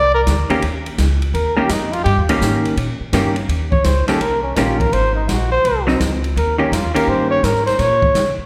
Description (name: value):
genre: jazz, small-group swing and bop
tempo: 168 BPM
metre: 4/4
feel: swing 65% on 8ths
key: Eb mixolydian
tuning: A4 = 440 Hz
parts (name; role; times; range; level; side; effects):
- dark trumpet; second line; 0.0-8.4 s; Db4 to D5; -20 LUFS; equal; none
- upright bass; bass; 0.0-8.4 s; Ab1 to Db3; -22 LUFS; equal; none
- open jazz drum kit; drums; 0.3-8.3 s; hi-hat, kick drum, ride cymbal, snare drum; -26 LUFS; equal; none
- vintage hollow-body jazz guitar; accompaniment; 0.5-7.4 s; Eb3 to G4; -22 LUFS; equal; none
room: wet scoring stage reverb, RT60 1.5 s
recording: recorded in a church or concert hall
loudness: -17 LUFS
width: mono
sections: 0.0-3.5 A section; 3.5-8.5 A section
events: trumpet solo 0.0-8.5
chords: 0.0 Bb; 0.6 Eb7; 4.9 Ab; 6.4 Eb7